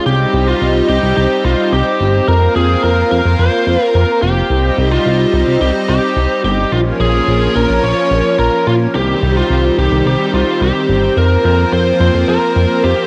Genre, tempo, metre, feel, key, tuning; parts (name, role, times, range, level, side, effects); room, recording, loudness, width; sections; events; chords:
synthwave; 108 BPM; 4/4; straight; C phrygian; A4 = 440 Hz
biting lead guitar; melody; 0.0-13.1 s; F4 to Db5; -18 LUFS; equal; overdrive, cassette tape, analog delay
lush unison pad; sustained chords; 0.0-13.1 s; Eb3 to F4; -18 LUFS; equal; chorus
chorused synth bass; bass; 0.1-12.9 s; F1 to Bb2; -17 LUFS; equal; tube saturation
light reverb, digital ambience; home recording on cassette; -13 LUFS; mono
0.1-13.1 A section
0.1 Cm; 2.3 Fsus4; 4.5 Cm; 6.7 Bbm; 8.9 Cm; 11.2 Fsus4